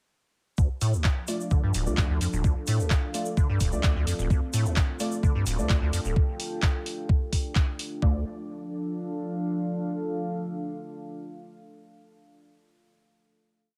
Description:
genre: acid house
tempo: 129 BPM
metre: 4/4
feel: straight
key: D minor pentatonic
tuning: A4 = 440 Hz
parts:
  - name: warbly tape-like pad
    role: sustained chords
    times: 1.2-11.9 s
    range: F3 to A4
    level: -37 LUFS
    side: equal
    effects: chorus, built-in reverb, sidechain pumping
  - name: acid bass, square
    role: riff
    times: 0.6-8.2 s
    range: D1 to D3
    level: -29 LUFS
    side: equal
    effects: ensemble chorus, cassette tape, sidechain pumping
  - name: electronic kick drum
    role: drums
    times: 0.6-8.1 s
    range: none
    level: -26 LUFS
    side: equal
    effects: none
  - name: tube shaker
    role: percussion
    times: 0.6-6.1 s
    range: none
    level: -42 LUFS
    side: equal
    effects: none
  - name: deep dark ambient pad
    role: texture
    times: 2.6-12.1 s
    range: D4 to G5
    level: -40 LUFS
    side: equal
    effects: chorus, built-in reverb, sidechain pumping
  - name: punchy analog drum machine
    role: drums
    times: 0.8-7.9 s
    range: handclaps, hi-hat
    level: -35 LUFS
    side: equal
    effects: none
  - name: deep mellow chord stab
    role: stabs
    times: 1.3-11.9 s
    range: A3 to D5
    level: -37 LUFS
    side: equal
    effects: ensemble chorus, cassette tape, dub echo
room: little or no reverb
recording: none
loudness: -27 LUFS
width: mono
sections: 0.6-8.0 groove; 8.0-11.7 final chord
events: none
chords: 0.6 Dm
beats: | 0.58 1.05 1.51 1.98 | 2.44 2.91 3.37 3.84 | 4.30 4.77 5.23 5.70 | 6.16 6.63 7.09 7.56 | 8.02 8.49 8.95 9.42 | 9.88 10.35 10.81 11.28

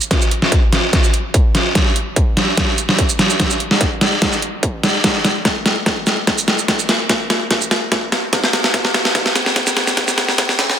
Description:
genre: heavy wobble dubstep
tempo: 146 BPM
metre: 4/4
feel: half-time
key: none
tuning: none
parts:
  - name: dubstep drum kit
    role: drums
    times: 0.0-10.8 s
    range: hi-hat, shaker, snare drum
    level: -15 LUFS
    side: equal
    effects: none
  - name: electronic kick drum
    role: drums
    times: 0.1-10.5 s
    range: none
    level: -18 LUFS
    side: equal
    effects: distortion
room: moderate plate reverb, RT60 2.2 s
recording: dense, heavily limited modern master, high-pass filter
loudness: -14 LUFS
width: side -9 dB against mid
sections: 0.0-10.8 A section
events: build-up 0.0-10.8; drum fill 0.0-10.8; filter sweep 0.0-10.8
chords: none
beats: | 0.11 0.52 0.93 1.34 | 1.75 2.16 2.57 2.98 | 3.40 3.81 4.22 4.63 | 5.04 5.45 5.86 6.27 | 6.68 7.09 7.51 7.92 | 8.33 8.74 9.15 9.56 | 9.97 10.38

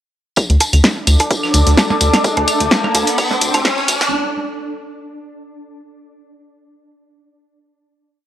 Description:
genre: minimal techno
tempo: 128 BPM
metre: 4/4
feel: swing 54% on 16ths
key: unclear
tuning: A4 = 440 Hz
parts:
  - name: crunchy breakbeat drum kit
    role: drums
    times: 0.4-4.1 s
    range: hi-hat, snare drum, tambourine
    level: -27 LUFS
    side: equal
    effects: none
  - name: electronic kick drum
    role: drums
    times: 0.4-3.8 s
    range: none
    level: -20 LUFS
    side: equal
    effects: overdrive, high-pass filter on kick, studio reverb
  - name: punchy analog drum machine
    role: drums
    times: 0.4-4.1 s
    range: hi-hat, snare drum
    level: -16 LUFS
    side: equal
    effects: overdrive, studio reverb
  - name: claves and percussion blips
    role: percussion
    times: 0.4-4.1 s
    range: none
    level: -21 LUFS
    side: right 2 dB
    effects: overdrive, studio reverb, analog delay
  - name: tambourine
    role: percussion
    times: 0.4-4.1 s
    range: none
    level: -24 LUFS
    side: left 2 dB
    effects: none
  - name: riser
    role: sound effects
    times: 1.4-4.1 s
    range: none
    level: -22 LUFS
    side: equal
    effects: none
  - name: swarming drone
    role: texture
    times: 1.0-4.1 s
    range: D4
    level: -30 LUFS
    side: right 2 dB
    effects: built-in reverb, sidechain pumping
  - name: warbly tape-like pad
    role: texture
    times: 1.1-4.1 s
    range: D4 to D6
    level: -21 LUFS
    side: left 1 dB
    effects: chorus, built-in reverb, phaser, sidechain pumping
  - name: rubbery square bass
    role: bass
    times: 0.5-4.0 s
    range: D2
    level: -14 LUFS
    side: equal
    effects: sidechain pumping
room: light reverb, small room ambience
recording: dry, gritty hardware recording, transformer saturation, cassette tape, high-pass filter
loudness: -12 LUFS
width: side -12 dB against mid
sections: 0.4-4.1 build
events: build-up 0.4-4.1; filter sweep 0.4-4.1; riser 1.4-4.1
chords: 0.4 D5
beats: | 0.37 0.84 1.31 1.77 | 2.24 2.71 3.18 3.65

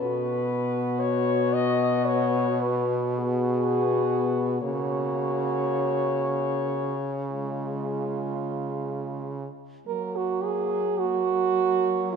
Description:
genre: classical, lyrical piece for horn quartet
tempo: 40-60 BPM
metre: 4/4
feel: rubato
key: F# major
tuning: A4 = 439 Hz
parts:
  - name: warm French horn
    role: melody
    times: 0.0-12.2 s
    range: G#4 to D#5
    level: -28 LUFS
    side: left 6 dB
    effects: none
  - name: clear French horn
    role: second line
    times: 0.0-12.2 s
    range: E#4 to A#4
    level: -28 LUFS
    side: right 6 dB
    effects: none
  - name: mellow French horn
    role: accompaniment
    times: 0.0-12.2 s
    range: G#3 to B3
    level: -32 LUFS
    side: left 7 dB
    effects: none
  - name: clear French horn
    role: bass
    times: 0.0-12.2 s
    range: B2 to F#3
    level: -30 LUFS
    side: right 2 dB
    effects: none
room: moderate concert hall reverb, RT60 1.8 s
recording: none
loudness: -24 LUFS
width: side -6 dB against mid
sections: 0.0-9.9 A section; 9.9-12.2 B section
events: none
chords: 0.0 G#m7/B; 4.6 F#/C#; 7.3 C#; 9.9 F#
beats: | 0.01 1.03 2.09 3.22 | 4.64 6.04 7.32 8.59 | 9.87 11.02 12.13

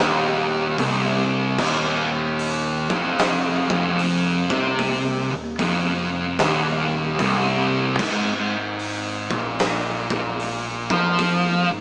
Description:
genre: stoner and doom metal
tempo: 75 BPM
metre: 4/4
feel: swing 64% on 8ths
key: C minor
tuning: A4 = 440 Hz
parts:
  - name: thick fuzz guitar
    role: riff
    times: 0.0-11.8 s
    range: C2 to F3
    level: -27 LUFS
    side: left 1 dB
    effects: distortion
  - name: thick fuzz guitar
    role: riff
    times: 0.0-11.8 s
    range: C2 to F3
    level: -21 LUFS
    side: equal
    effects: distortion
  - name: growling fingered electric bass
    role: bass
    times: 0.0-11.8 s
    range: C1 to F2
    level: -31 LUFS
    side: equal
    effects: overdrive, tube saturation
  - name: oversized low-tuned drum kit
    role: drums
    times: 0.8-11.4 s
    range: crash cymbal, hi-hat, kick drum, snare drum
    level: -25 LUFS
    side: equal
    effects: none
room: light reverb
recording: band playing live in one room, small speaker sound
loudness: -19 LUFS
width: side -26 dB against mid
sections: 0.0-11.8 A section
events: none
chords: 0.0 Cmadd11; 8.0 Ab5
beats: 0.78 | 1.59 2.39 3.19 3.99 | 4.79 5.59 6.39 7.19 | 7.99 8.79 9.59 10.39 | 11.19

